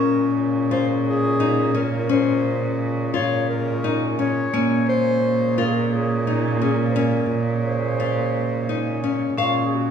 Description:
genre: contemporary instrumental, chamber music in an uneven meter.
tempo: 173 BPM (eighths).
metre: 7/8.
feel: straight.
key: Bb minor.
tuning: A4 = 440 Hz.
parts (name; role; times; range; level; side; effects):
mellow clarinet; melody; 0.0-9.9 s; F4 to Db5; -26 LUFS; left 2 dB; none.
vibraphone with hard mallets; second line; 0.0-9.9 s; Bb3 to Db4; -24 LUFS; left 1 dB; none.
hand-pumped harmonium; sustained chords; 0.0-9.9 s; Bb2 to Db4; -30 LUFS; equal; none.
nylon-string guitar; arpeggios; 0.0-9.9 s; Db4 to F5; -25 LUFS; left 7 dB; none.
warm cello; bass; 0.0-9.9 s; Bb2; -24 LUFS; right 4 dB; none.
room: wet recital hall reverb, RT60 1.5 s.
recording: heard from further back in the room.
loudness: -19 LUFS.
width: side -7 dB against mid.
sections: 0.0-9.4 A section.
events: none.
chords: 0.0 Bbm7.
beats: 0.02 0.37 0.71 1.06 1.41 1.75 | 2.10 2.45 2.79 3.14 3.49 3.83 4.18 | 4.53 4.87 5.22 5.57 5.91 6.26 6.61 | 6.95 7.30 7.65 7.99 8.34 8.69 9.03 | 9.38 9.73.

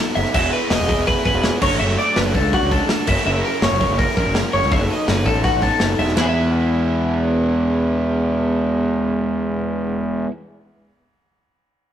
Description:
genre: math rock and midwest emo.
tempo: 165 BPM.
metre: 4/4.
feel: straight.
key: E major.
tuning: A4 = 440 Hz.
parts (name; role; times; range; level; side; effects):
twelve-string electric guitar; arpeggios; 0.0-10.4 s; E4 to E5; -21 LUFS; left 1 dB; none.
overdriven electric guitar; riff; 0.0-10.3 s; E3 to A#4; -23 LUFS; right 1 dB; none.
fuzz fingered electric bass; bass; 0.2-10.2 s; E1 to E2; -20 LUFS; equal; overdrive.
modern studio drum kit; drums; 0.2-6.2 s; crash cymbal, hi-hat, kick drum, ride cymbal, snare drum; -22 LUFS; equal; none.
room: moderate stone room reverb, RT60 1.3 s.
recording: rough rehearsal-room recording, tube saturation.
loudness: -16 LUFS.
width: side -10 dB against mid.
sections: 0.0-6.2 A section; 6.2-9.1 B section.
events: none.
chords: 0.3 Emaj7; 1.6 Dmaj7/F#; 3.1 F#7; 4.7 B7sus4/F#; 6.2 E.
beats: | 0.34 0.70 1.07 1.43 | 1.80 2.16 2.52 2.89 | 3.25 3.62 3.98 4.34 | 4.71 5.07 5.43 5.80 | 6.16 6.52 6.89 7.25 | 7.61 7.98 8.34 8.70.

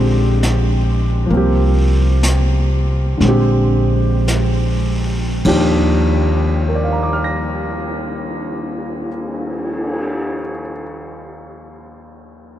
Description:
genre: jazz ballad.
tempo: 49-71 BPM.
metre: 4/4.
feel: swing 66% on 8ths.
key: Eb major.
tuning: A4 = 440 Hz.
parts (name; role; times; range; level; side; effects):
warm concert grand piano; accompaniment; 0.0-12.6 s; Eb2 to Bb6; -19 LUFS; equal; none.
upright bass; bass; 0.0-9.0 s; Bb1 to Eb2; -16 LUFS; equal; none.
jazz brush drum kit; drums; 0.4-10.1 s; brushed snare drum, cymbal swell, hi-hat, kick drum, ride cymbal, snare drum; -26 LUFS; equal; none.
room: moderate huge ambient reverb, RT60 7.9 s.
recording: dreamy mix soaked in reverb.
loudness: -14 LUFS.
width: side -12 dB against mid.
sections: 0.0-5.5 A section; 5.5-10.3 B section.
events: slowing down 0.0-5.5.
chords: 0.0 Bb13; 1.3 C7sus4; 3.2 Bb13; 5.5 Ebmaj7.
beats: 0.42 | 1.29 2.22 3.21 4.28 | 5.46 6.68 7.88 9.09.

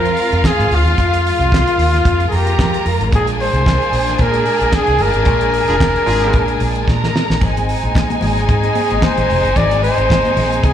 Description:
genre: disco.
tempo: 112 BPM.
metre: 4/4.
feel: swing 56% on 16ths.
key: unclear.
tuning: A4 = 441 Hz.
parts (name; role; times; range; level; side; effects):
warm flugelhorn; melody; 0.0-10.7 s; F4 to D5; -17 LUFS; left 1 dB; slapback echo.
warm symphonic violin section; second line; 0.0-10.7 s; Ab3 to Bb5; -21 LUFS; right 2 dB; slapback echo.
clear symphonic string section; sustained chords; 0.0-10.7 s; Ab3 to F4; -23 LUFS; left 1 dB; none.
overdriven fingered electric bass; bass; 0.0-10.7 s; F1 to F3; -18 LUFS; equal; none.
damped 70s drum kit; drums; 0.1-10.7 s; handclaps, hi-hat, kick drum, snare drum, splash cymbal; -18 LUFS; equal; none.
warm horn section; stabs; 5.7-6.4 s; D4 to Ab4; -23 LUFS; right 2 dB; slapback echo.
congas; percussion; 7.4-10.7 s; none; -25 LUFS; left 6 dB; slapback echo.
room: light reverb.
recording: live gig heard through the venue's PA, club ambience.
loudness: -12 LUFS.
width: side -10 dB against mid.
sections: 0.0-10.7 A section.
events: band accent 5.3-7.4; drum fill 6.9-7.4.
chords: 0.0 Fm; 3.1 Bb7; 7.4 Ab.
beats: 0.44 | 0.98 1.51 2.05 2.59 | 3.12 3.66 4.20 4.74 | 5.27 5.81 6.34 6.88 | 7.42 7.95 8.49 9.03 | 9.56 10.10 10.63.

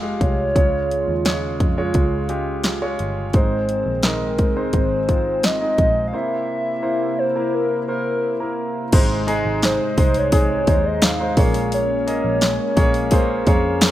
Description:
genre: piano-driven pop.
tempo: 86 BPM.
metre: 4/4.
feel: straight.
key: Ab major.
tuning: A4 = 444 Hz.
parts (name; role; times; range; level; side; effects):
clear concert grand piano; accompaniment; 0.0-13.9 s; Ab2 to Ab5; -24 LUFS; right 1 dB; none.
chorused pulse-width pad; sustained chords; 0.0-13.9 s; C3 to G4; -26 LUFS; equal; none.
vintage muted picked electric bass; bass; 0.0-13.9 s; F1 to F2; -26 LUFS; equal; none.
hollow clarinet-like synth lead; melody; 0.2-13.8 s; Bb4 to F5; -22 LUFS; equal; chorus.
house drum kit; drums; 0.2-13.9 s; crash cymbal, hi-hat, kick drum, snare drum; -18 LUFS; equal; none.
room: light reverb.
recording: rough home demo mix.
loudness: -17 LUFS.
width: side -13 dB against mid.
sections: 0.0-8.9 A section; 8.9-13.9 B section.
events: break 6.1-8.9; grand piano fill 13.1-13.9.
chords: 0.0 Fmadd9; 0.6 Db; 3.3 Ab; 6.1 C7; 8.9 Ab; 11.4 Bbm7.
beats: | 0.55 1.25 1.95 2.65 | 3.34 4.04 4.74 5.44 | 6.14 6.84 7.53 8.23 | 8.93 9.63 10.33 11.03 | 11.72 12.42 13.12 13.82.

